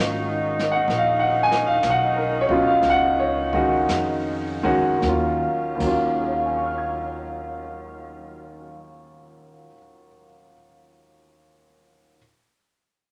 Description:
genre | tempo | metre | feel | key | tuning
jazz ballad | 51-68 BPM | 4/4 | swing 67% on 8ths | Eb minor | A4 = 438 Hz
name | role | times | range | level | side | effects
warm baby grand piano | accompaniment | 0.0-12.2 s | Eb2 to Ab6 | -23 LUFS | equal | none
mellow saxophone section | sustained chords | 0.0-8.9 s | Db3 to F4 | -31 LUFS | equal | none
upright bass | bass | 0.0-9.7 s | Ab1 to F2 | -34 LUFS | equal | none
jazz brush drum kit | drums | 0.0-6.0 s | brushed snare drum, crash cymbal, hi-hat, kick drum, snare drum | -34 LUFS | equal | none
room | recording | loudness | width
wet studio reverb, RT60 0.7 s | none | -22 LUFS | mono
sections
0.0-5.0 A section; 5.0-9.7 B section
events
slowing down 0.0-5.0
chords
0.0 Ebm9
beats
| 0.89 1.83 2.82 3.89 | 5.02 6.19 7.35 8.51

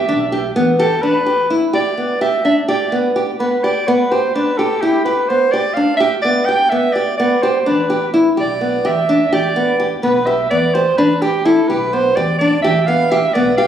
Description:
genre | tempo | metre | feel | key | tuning
contemporary instrumental, chamber music in an uneven meter | 253 BPM (eighths) | 7/8 | straight | E phrygian | A4 = 440 Hz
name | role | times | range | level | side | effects
mellow soprano saxophone | melody | 0.0-13.7 s | G4 to G5 | -17 LUFS | right 2 dB | none
mellow clarinet | second line | 0.0-0.8 s | G4 | -32 LUFS | right 5 dB | none
glockenspiel with soft plastic mallets | texture | 0.0-1.0 s | D6 to A6 | -39 LUFS | left 1 dB | none
nylon-string guitar | arpeggios | 0.1-13.7 s | B3 to G4 | -16 LUFS | equal | none
upright bass | bass | 0.1-0.9, 7.7-13.7 s | B1 to E2 | -25 LUFS | equal | none
room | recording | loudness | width
moderate concert hall reverb, RT60 1.9 s | recorded on a phone in the room, studio ambience | -13 LUFS | side -9 dB against mid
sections
0.0-1.0 A section; 1.0-13.7 B section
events
none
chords
0.0 Em7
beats
0.09 0.32 0.56 0.80 | 1.03 1.27 1.50 1.74 1.98 2.21 2.45 | 2.69 2.92 3.16 3.40 3.64 3.87 4.11 | 4.35 4.58 4.82 5.06 5.29 5.53 5.77 | 6.01 6.24 6.48 6.72 6.95 7.19 7.43 | 7.67 7.90 8.14 8.38 8.61 8.85 9.09 | 9.32 9.56 9.80 10.04 10.27 10.51 10.74 | 10.98 11.22 11.46 11.69 11.93 12.17 12.40 | 12.64 12.88 13.11 13.35 13.59

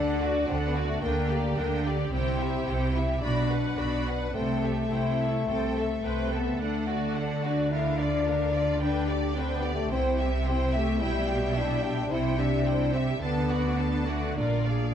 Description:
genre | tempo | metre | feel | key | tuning
cinematic, heroic adventure film score | 108 BPM | 4/4 | straight | unclear | A4 = 440 Hz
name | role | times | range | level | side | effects
rich symphonic violin section | melody | 0.0-14.9 s | D5 to B5 | -37 LUFS | left 1 dB | none
warm symphonic violin section | second line | 0.0-14.9 s | E4 to G5 | -37 LUFS | left 2 dB | none
bright studio viola section | accompaniment | 0.0-14.9 s | D4 to B4 | -36 LUFS | right 1 dB | none
mellow French horn section | sustained chords | 0.0-14.9 s | G3 to E4 | -29 LUFS | left 4 dB | none
rich symphonic cello section | bass | 0.0-14.9 s | Bb2 to D3 | -32 LUFS | right 3 dB | none
rich symphonic double bass section | bass | 0.0-14.9 s | Bb1 to D2 | -31 LUFS | right 2 dB | none
room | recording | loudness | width
moderate scoring stage reverb, RT60 1.9 s | dark, warm production | -25 LUFS | side -9 dB against mid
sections
0.0-14.9 A section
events
none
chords
0.0 D; 1.0 Gm/D; 2.1 C; 3.2 Bm; 4.4 C6; 6.6 D; 7.7 Bb/D; 8.8 G/D; 9.9 C; 11.0 Em/B; 12.1 C; 13.2 D; 14.4 Bb7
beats
0.48 1.03 1.58 | 2.13 2.68 3.23 3.79 | 4.35 4.92 5.48 6.04 | 6.61 7.17 7.72 8.27 | 8.82 9.37 9.92 10.46 | 11.01 11.56 12.11 12.67 | 13.22 13.79 14.38

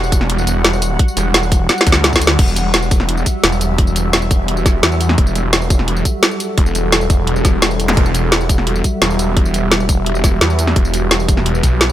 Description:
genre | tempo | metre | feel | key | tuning
dark technical drum and bass | 172 BPM | 4/4 | straight | E minor | A4 = 438 Hz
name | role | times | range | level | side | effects
deep dark ambient pad | sustained chords | 0.0-11.9 s | G3 to F#5 | -21 LUFS | right 1 dB | chorus, built-in reverb, sidechain pumping
snarling distorted saw bass | bass | 0.0-11.9 s | E1 to E2 | -17 LUFS | equal | distortion, tube saturation, sidechain pumping
drum and bass drum kit | drums | 0.0-11.9 s | crash cymbal, hi-hat, snare drum, tambourine | -16 LUFS | equal | none
electronic kick drum | drums | 0.1-11.7 s | none | -14 LUFS | equal | none
zap | sound effects | 7.9-8.0 s | none | -22 LUFS | equal | none
room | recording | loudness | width
little or no reverb | none | -12 LUFS | side -12 dB against mid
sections
0.0-2.4 A section; 2.4-11.9 A section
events
drop 0.0-2.4, 2.4-11.9; drum fill 1.7-2.4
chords
0.0 Emadd9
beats
0.30 0.65 | 0.99 1.34 1.69 2.04 | 2.39 2.74 3.09 3.44 | 3.79 4.13 4.48 4.83 | 5.18 5.53 5.88 6.23 | 6.58 6.92 7.27 7.62 | 7.97 8.32 8.67 9.02 | 9.37 9.71 10.06 10.41 | 10.76 11.11 11.46 11.81

